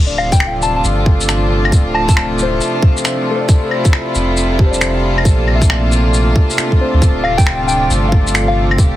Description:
future garage; 136 BPM; 4/4; swing 65% on 16ths; D minor; A4 = 439 Hz
rich chamber string section; sustained chords; 0.0-9.0 s; C3 to G4; -18 LUFS; equal; sidechain pumping
warm sub bass; bass; 0.0-9.0 s; D1 to D2; -17 LUFS; equal; sidechain pumping
drifting glass-harmonics texture; texture; 0.1-9.0 s; A4; -27 LUFS; right 5 dB; chorus, built-in reverb
muted felt-like synth keys; accompaniment; 0.1-9.0 s; G4 to F5; -23 LUFS; left 3 dB; chorus, sidechain pumping, tape echo
soft struck synth lead; melody; 0.2-2.3, 7.2-8.8 s; F5 to A5; -20 LUFS; left 1 dB; chorus, digital delay
electronic claves, shaker and finger snaps; drums; 0.2-8.9 s; -20 LUFS; left 1 dB
electronic kick drum; drums; 0.3-8.9 s; -11 LUFS; equal
little or no reverb; heavily compressed radio sound; -11 LUFS; side -14 dB against mid
0.0-9.0 A section
0.0 Dm7; 3.5 Fmaj7; 5.3 Bbmaj9; 7.0 Dm7

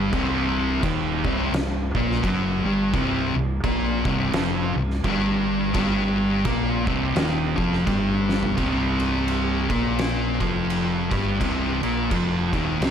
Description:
stoner and doom metal; 85 BPM; 4/4; swing 59% on 8ths; C minor; A4 = 442 Hz
fuzz guitar; riff; 0.0-12.9 s; C2 to Bb3; -26 LUFS; right 9 dB; distortion
thick fuzz guitar; riff; 0.0-12.9 s; C2 to Bb3; -25 LUFS; left 8 dB; distortion
overdriven fingered electric bass; bass; 0.0-12.9 s; C1 to Bb1; -29 LUFS; equal
oversized low-tuned drum kit; drums; 0.1-12.9 s; crash cymbal, kick drum, snare drum, toms; -28 LUFS; right 1 dB
light reverb; -20 LUFS; side -8 dB against mid
0.0-8.6 A section; 8.6-12.9 B section
drum fill 8.2-8.6
0.0 Cm

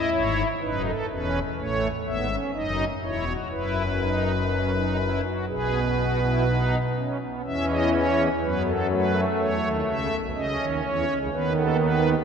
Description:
classical, baroque-style 3-part fugue for pipe organ; 62 BPM; 4/4; straight; E major; A4 = 440 Hz
pipe organ, strings celeste; solo; 0.0-12.1 s; E1 to E5; -22 LUFS; equal
wet church reverb, RT60 3.5 s; -22 LUFS; side -7 dB against mid
0.0-7.4 A section; 7.4-12.2 B section
0.0 A; 3.5 Bsus4/F#; 5.5 B; 7.4 E5; 9.4 A; 11.3 B7/D#

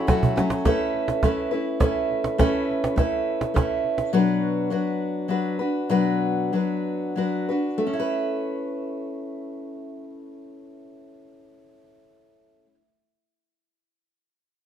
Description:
acoustic folk duo or small band; 87-104 BPM; 3/4; straight; A major; A4 = 439 Hz
picked steel-string acoustic guitar; accompaniment; 0.0-12.9 s; B2 to B4; -23 LUFS; left 1 dB
cajon; percussion; 0.1-4.1 s; -24 LUFS; right 2 dB
light reverb; minimal, uncompressed stereo recording; -22 LUFS; side -9 dB against mid
0.7-7.8 A section; 7.8-12.0 B section
drum fill 0.2-0.7; slowing down 4.1-7.8
0.0 A6; 0.7 Aadd9; 4.1 Bm; 7.8 Aadd9

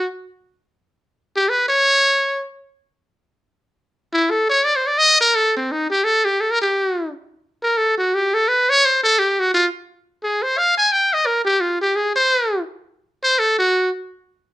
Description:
jazz; 172 BPM; 4/4; swing 62% on 8ths; A4 = 439 Hz
trumpet with metal mute; solo; 0.0-13.9 s; C4 to Ab5; -15 LUFS; equal
moderate club reverb, RT60 0.8 s; -15 LUFS; side -16 dB against mid
0.0-6.0 A section; 6.0-14.5 A section
muted trumpet solo 0.0-14.5

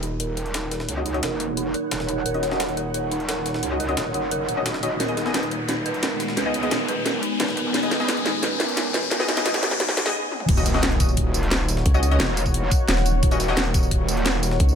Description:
dark technical drum and bass; 175 BPM; 4/4; straight; Eb minor; A4 = 440 Hz
sweeping resonant pad; sustained chords; 0.0-14.8 s; Ab3 to Db5; -32 LUFS; right 2 dB; chorus, sidechain pumping
dark detuned synth bell; arpeggios; 0.0-10.0 s; Eb4 to Eb5; -30 LUFS; right 4 dB; chorus, sidechain pumping, low-pass filter, digital delay
metallic wobble bass; bass; 0.0-14.6 s; Eb1 to Db2; -28 LUFS; equal; distortion, chorus, overdrive, sidechain pumping
breakbeat sampler-style drum kit; drums; 0.0-14.7 s; hi-hat, snare drum; -32 LUFS; equal; high-pass filter on hats, high-pass filter on snare
drum and bass drum kit; drums; 0.0-14.8 s; crash cymbal, hi-hat, snare drum, tambourine, toms; -26 LUFS; equal
riser and impact; sound effects; 0.0-11.9 s; -30 LUFS; left 1 dB
ethereal airy pad; texture; 0.6-14.8 s; Cb4 to Ab5; -30 LUFS; equal; ensemble chorus, built-in reverb, phaser, sidechain pumping
orchestra-hit-like synth stab; stabs; 1.0-13.6 s; Cb4 to Eb5; -29 LUFS; left 3 dB; built-in reverb, cassette tape, digital delay
electronic kick drum; drums; 10.5-14.7 s; -21 LUFS; equal
vowel-sweep wobble bass; bass; 11.9-14.8 s; Eb1 to Db2; -19 LUFS; equal; chorus, tube saturation
light reverb, digital ambience; high-pass filter; -20 LUFS; side -8 dB against mid
0.0-10.5 A section; 10.5-14.8 B section
build-up 0.0-10.5; riser 0.0-10.1; filter sweep on analog synth pad 0.0-10.5; filter sweep on synth bell 0.0-10.5; filter sweep on synth stab 0.0-10.5; filter sweep 0.0-10.5; drum fill 5.0-10.1, 10.3; break 10.1-10.5; drop 10.5-14.8; impact 10.5-11.9
0.0 Ebm7; 5.0 Abm/Eb; 10.5 Ebm7

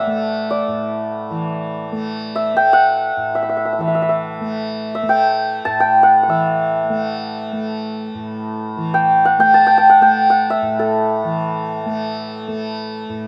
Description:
indian classical, Hindustani; free time; A raga bhimpalasi; A4 = 438 Hz
santur; melody; 0.0-13.3 s; A4 to A5; -17 LUFS; equal; slapback echo
tanpura; drone; 0.0-13.3 s; A2 to A3; -26 LUFS; equal
light reverb; recorded outdoors, with no room sound; -17 LUFS; mono
0.0-13.3 A section

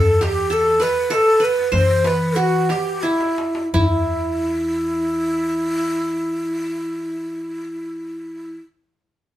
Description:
Arabic maqam ensemble; 82-102 BPM; 3/4; straight; E minor; A4 = 440 Hz
breathy mellow ney; melody; 0.0-8.6 s; E4 to C5; -20 LUFS; equal
qanun; second line; 0.0-8.6 s; E4 to C5; -23 LUFS; right 2 dB
upright bass; bass; 0.0-8.6 s; E2 to E3; -26 LUFS; equal
darbuka; percussion; 0.2-4.1 s; -22 LUFS; left 1 dB
moderate studio reverb, RT60 0.6 s; band playing live in one room; -17 LUFS; side -13 dB against mid
0.0-3.7 A section; 3.7-8.1 B section
slowing down 0.0-3.7; drum fill 3.0-3.7

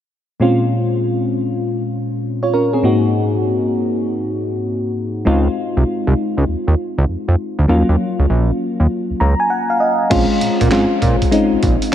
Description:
R&B, new jack swing; 99 BPM; 4/4; swing 65% on 16ths; A4 = 443 Hz
mellow FM electric piano; accompaniment; 0.4-11.9 s; Ab2 to Bb5; -16 LUFS; left 1 dB; chorus
fat analog bass; bass; 5.3-11.8 s; Bb1 to Bb2; -15 LUFS; right 1 dB
dusty soul sampler-style drum kit; drums; 10.1-11.9 s; crash cymbal, handclaps, hi-hat, kick drum, snare drum; -19 LUFS; right 1 dB
moderate cathedral reverb, RT60 6.1 s; dreamy mix soaked in reverb; -14 LUFS; side -10 dB against mid
0.4-10.1 A section; 10.1-11.9 B section
FM electric piano fill 8.9-10.1
0.4 Bbm7; 2.8 Ab7; 5.3 Dbmaj7; 7.7 Ebm7; 10.1 Bbm7

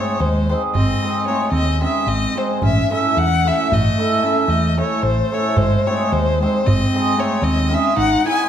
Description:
balkan folk, Balkan wedding band; 224 BPM (eighths); 11/8; straight; G# phrygian dominant; A4 = 439 Hz
rich violin; melody; 0.0-8.5 s; B#4 to G#5; -21 LUFS; left 4 dB
clear clarinet; second line; 0.0-8.5 s; G#3 to E4; -23 LUFS; right 4 dB
cimbalom; accompaniment; 0.0-8.5 s; G#3 to A4; -21 LUFS; right 1 dB
darbuka; percussion; 0.1-8.4 s; -22 LUFS; right 1 dB
hollow-body short-scale fingered electric bass; bass; 0.2-8.1 s; G#1 to E2; -21 LUFS; equal
wet recital hall reverb, RT60 1.6 s; -15 LUFS; side -9 dB against mid
0.0-8.5 A section
0.0 G#; 2.6 A; 5.6 G#

